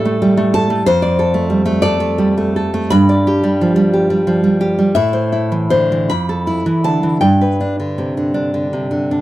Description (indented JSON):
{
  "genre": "romantic piece for solo classical guitar",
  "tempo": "48-64 BPM (dotted quarters)",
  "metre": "6/8",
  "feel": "rubato",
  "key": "unclear",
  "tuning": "A4 = 439 Hz",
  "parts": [
    { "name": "nylon-string guitar", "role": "solo", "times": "0.0-9.2 s", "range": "F2 to B5", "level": "-13 LUFS", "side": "equal", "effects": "none" }
  ],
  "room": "little or no reverb",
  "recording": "dry, close 1970s-style studio recording",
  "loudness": "-13 LUFS",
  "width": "side -15 dB against mid",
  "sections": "0.0-9.2 A section",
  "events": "none",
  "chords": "0.0 A5; 0.9 F6; 2.9 G; 4.9 Am; 6.1 Fmaj7; 7.2 G"
}